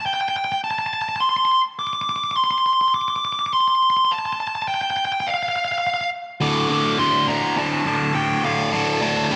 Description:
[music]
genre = rock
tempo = 104 BPM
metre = 4/4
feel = straight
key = D minor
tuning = A4 = 440 Hz
[part]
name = dark smooth lead guitar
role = melody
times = 0.0-9.4 s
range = F5 to D6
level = -22 LUFS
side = equal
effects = overdrive
[part]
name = overdriven electric guitar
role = riff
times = 6.4-9.4 s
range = D2 to D3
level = -22 LUFS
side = equal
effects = phaser
[sound]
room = moderate lush hall reverb, RT60 2.0 s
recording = none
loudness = -21 LUFS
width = mono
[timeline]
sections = 0.0-6.4 A section; 6.4-9.4 B section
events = build-up 6.4-9.4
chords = 0.0 N.C.; 6.4 D5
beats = 0.05 0.63 1.20 | 1.78 2.36 2.94 3.52 | 4.09 4.67 5.25 5.83 | 6.41 6.99 7.56 8.14 | 8.72 9.30

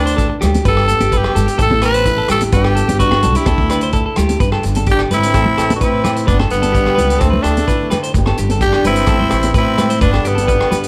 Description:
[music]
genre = highlife guitar band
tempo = 128 BPM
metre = 4/4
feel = straight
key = G major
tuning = A4 = 440 Hz
[part]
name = raspy tenor saxophone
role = melody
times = 0.0-10.9 s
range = B3 to B4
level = -20 LUFS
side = equal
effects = none
[part]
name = nylon-string guitar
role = accompaniment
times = 0.0-10.9 s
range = F#2 to G4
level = -27 LUFS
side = equal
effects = none
[part]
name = clean electric guitar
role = arpeggios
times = 0.0-10.9 s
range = G4 to C5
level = -23 LUFS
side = equal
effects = none
[part]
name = upright bass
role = bass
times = 0.0-10.9 s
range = G1 to D3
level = -20 LUFS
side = equal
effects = none
[part]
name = vintage drum kit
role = drums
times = 0.1-10.9 s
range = hi-hat, kick drum, rim click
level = -22 LUFS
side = equal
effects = none
[part]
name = maracas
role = percussion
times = 0.2-10.8 s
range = none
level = -38 LUFS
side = equal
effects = none
[part]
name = agogo bells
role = percussion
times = 0.4-10.7 s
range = none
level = -31 LUFS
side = equal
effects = none
[part]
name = congas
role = percussion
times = 0.4-10.8 s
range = none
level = -25 LUFS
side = equal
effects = none
[part]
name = clear flugelhorn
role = second line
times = 4.9-10.9 s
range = G3 to D4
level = -26 LUFS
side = equal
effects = none
[sound]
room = light reverb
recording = none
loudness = -14 LUFS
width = mono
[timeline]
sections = 0.0-4.4 A section; 4.4-10.9 B section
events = none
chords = 0.0 Dsus2; 0.7 G; 1.6 Asus2; 2.5 G; 3.5 Dsus2; 4.4 G; 5.3 Amadd9; 6.3 G; 7.2 Dsus2; 8.2 G; 9.1 Amadd9; 10.0 G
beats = 0.19 | 0.66 1.13 1.59 2.06 | 2.53 3.00 3.47 3.94 | 4.41 4.88 5.34 5.81 | 6.28 6.75 7.21 7.68 | 8.15 8.62 9.09 9.55 | 10.02 10.49

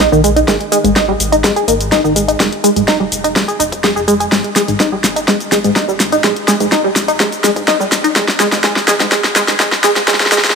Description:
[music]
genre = progressive house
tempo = 125 BPM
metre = 4/4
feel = straight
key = unclear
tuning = A4 = 437 Hz
[part]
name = tight sequenced synth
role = arpeggios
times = 0.0-10.4 s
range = Ab2 to Ab4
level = -13 LUFS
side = equal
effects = chorus, phaser, sidechain pumping, tape echo
[part]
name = dark detuned saw bass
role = bass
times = 0.0-10.6 s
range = F1 to Bb1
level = -24 LUFS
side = equal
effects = sidechain pumping
[part]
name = deep house drum kit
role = drums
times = 0.0-10.6 s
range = hi-hat, shaker, snare drum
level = -14 LUFS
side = left 1 dB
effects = small room ambience
[part]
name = electronic kick drum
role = drums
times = 0.0-10.2 s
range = none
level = -23 LUFS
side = equal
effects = high-pass filter on kick, small room ambience
[sound]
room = moderate huge ambient reverb, RT60 5.9 s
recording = high-pass filter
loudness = -11 LUFS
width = side -5 dB against mid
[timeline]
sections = 0.0-10.6 A section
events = build-up 0.0-10.6; drum fill 0.0-10.6; filter sweep 0.0-10.6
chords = 0.5 Ab5; 2.4 Fm; 4.3 Ab5; 6.2 Bb7sus4; 8.2 N.C.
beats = 0.00 | 0.48 0.96 1.44 1.92 | 2.40 2.88 3.36 3.84 | 4.32 4.80 5.28 5.76 | 6.24 6.72 7.20 7.68 | 8.16 8.64 9.12 9.60 | 10.08

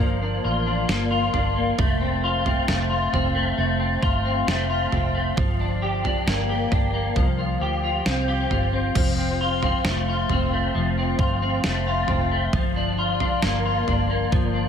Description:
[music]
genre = dream pop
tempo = 67 BPM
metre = 4/4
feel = straight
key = F major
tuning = A4 = 442 Hz
[part]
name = clean electric guitar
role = arpeggios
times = 0.0-14.7 s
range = F3 to G4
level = -23 LUFS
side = left 2 dB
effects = ensemble chorus, ping-pong delay
[part]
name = vintage muted fingered electric bass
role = bass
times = 0.0-14.7 s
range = F1 to D2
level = -26 LUFS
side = right 1 dB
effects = none
[part]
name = detuned 8-bit digital drum machine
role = drums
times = 0.9-14.5 s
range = crash cymbal, kick drum, snare drum, toms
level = -25 LUFS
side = right 1 dB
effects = none
[sound]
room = light reverb, digital ambience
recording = none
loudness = -20 LUFS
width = side -8 dB against mid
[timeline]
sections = 0.0-8.9 A section; 8.9-14.7 A section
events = none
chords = 0.0 Gm7; 1.8 F; 5.4 Gm7; 7.2 Csus4; 8.9 F; 12.5 Gm7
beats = 0.89 | 1.78 2.68 3.58 4.47 | 5.37 6.26 7.16 8.05 | 8.95 9.85 10.74 11.64 | 12.53 13.43 14.32

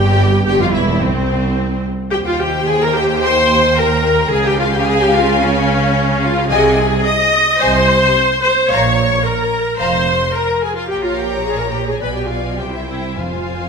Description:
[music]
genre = classical, dramatic, fast romantic movement for symphony orchestra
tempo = 109 BPM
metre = 4/4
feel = rubato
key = unclear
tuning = A4 = 440 Hz
[part]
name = rich symphonic violin section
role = melody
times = 0.0-13.7 s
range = C5 to Eb6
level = -23 LUFS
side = left 5 dB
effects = none
[part]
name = rich studio violin section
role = second line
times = 0.0-13.7 s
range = C4 to Bb5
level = -21 LUFS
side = left 3 dB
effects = none
[part]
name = clear symphonic viola section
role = accompaniment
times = 0.0-13.7 s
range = C4 to Eb5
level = -16 LUFS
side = equal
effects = none
[part]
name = rich studio double bass section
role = bass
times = 0.0-13.7 s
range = E1 to Eb2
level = -21 LUFS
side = right 3 dB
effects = none
[part]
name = rich symphonic cello section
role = bass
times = 0.0-13.7 s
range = C2 to Db3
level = -21 LUFS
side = right 3 dB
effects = none
[part]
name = timpani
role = percussion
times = 6.5-7.3, 13.2-13.7 s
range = F2 to C3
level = -30 LUFS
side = left 1 dB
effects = none
[sound]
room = wet scoring stage reverb, RT60 1.5 s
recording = minimal, uncompressed stereo recording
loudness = -13 LUFS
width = side -5 dB against mid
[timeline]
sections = 0.0-13.7 A section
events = none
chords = 0.0 C; 2.1 Cm/Eb; 4.3 Db; 6.5 Ab/C; 8.7 Bbm; 10.9 Bbm6; 12.0 Bdim7; 12.6 C; 13.2 Fm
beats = 0.47 1.03 1.58 | 2.13 2.68 3.23 3.78 | 4.33 4.88 5.42 5.96 | 6.51 7.05 7.60 8.15 | 8.70 9.25 9.79 10.35 | 10.90 11.46 12.02 12.59 | 13.18

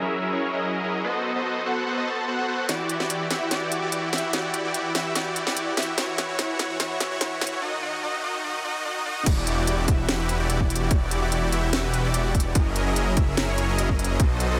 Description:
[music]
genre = future bass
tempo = 146 BPM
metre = 4/4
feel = half-time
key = E minor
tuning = A4 = 440 Hz
[part]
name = supersaw chords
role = riff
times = 0.0-14.6 s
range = D#3 to A5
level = -28 LUFS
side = equal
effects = sidechain pumping, low-pass filter, tape echo
[part]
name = trap drum kit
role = drums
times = 2.7-14.5 s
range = crash cymbal, hi-hat, snare drum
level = -31 LUFS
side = equal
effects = high-pass filter on snare, high-pass filter on hats, high-pass filter on cymbals
[part]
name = detuned saw bass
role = bass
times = 9.3-14.6 s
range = E1 to B1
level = -28 LUFS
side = equal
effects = chorus, sidechain pumping
[part]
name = electronic kick drum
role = drums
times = 9.3-14.3 s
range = none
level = -24 LUFS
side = equal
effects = none
[sound]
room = moderate shimmer reverb, RT60 5.4 s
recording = high-pass filter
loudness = -25 LUFS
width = mono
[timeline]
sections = 0.0-9.3 A section; 9.3-14.6 B section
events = build-up 0.0-9.3; filter sweep 0.0-9.3; drum fill 2.7-7.6; drop 9.3-14.6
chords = 0.0 F#13; 1.0 B7b9; 2.7 Em9; 6.0 F#5; 7.6 D#m; 9.3 Em9; 12.6 F#13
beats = 0.22 0.64 | 1.05 1.46 1.87 2.28 | 2.69 3.10 3.51 3.92 | 4.33 4.75 5.16 5.57 | 5.98 6.39 6.80 7.21 | 7.62 8.03 8.44 8.85 | 9.27 9.68 10.09 10.50 | 10.91 11.32 11.73 12.14 | 12.55 12.96 13.38 13.79 | 14.20

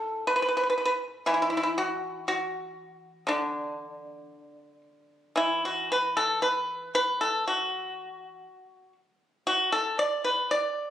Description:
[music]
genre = chinese traditional, Chinese solo plucked strings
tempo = 59 BPM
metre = 2/4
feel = rubato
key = D gong mode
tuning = A4 = 440 Hz
[part]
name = pipa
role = solo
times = 0.0-10.9 s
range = A2 to D5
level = -25 LUFS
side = equal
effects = none
[sound]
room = moderate recital hall reverb, RT60 1.4 s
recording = recorded on a phone in the room, studio reverb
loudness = -25 LUFS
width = side -11 dB against mid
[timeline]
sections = 0.0-5.4 A section; 5.4-10.9 B section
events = none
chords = none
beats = 0.26 | 1.27 2.28 | 3.28 4.31 | 5.38 6.42 | 7.45 8.45 | 9.46 10.49

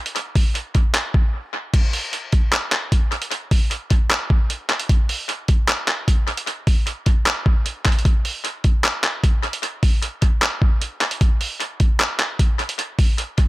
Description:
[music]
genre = hip hop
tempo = 152 BPM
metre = 4/4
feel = half-time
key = none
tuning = none
[part]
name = dusty soul sampler-style drum kit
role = drums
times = 0.1-13.5 s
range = crash cymbal, handclaps, hi-hat, kick drum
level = -17 LUFS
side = equal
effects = overdrive, analog delay
[sound]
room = little or no reverb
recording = echo-heavy mix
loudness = -18 LUFS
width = side -19 dB against mid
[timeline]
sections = 0.0-1.7 A section; 1.7-13.5 B section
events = break 1.3-1.7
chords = none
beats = | 0.16 0.55 0.95 1.34 | 1.74 2.13 2.52 2.92 | 3.31 3.71 4.10 4.50 | 4.89 5.29 5.68 6.08 | 6.47 6.87 7.26 7.66 | 8.05 8.45 8.84 9.24 | 9.63 10.03 10.42 10.81 | 11.21 11.60 12.00 12.39 | 12.79 13.18

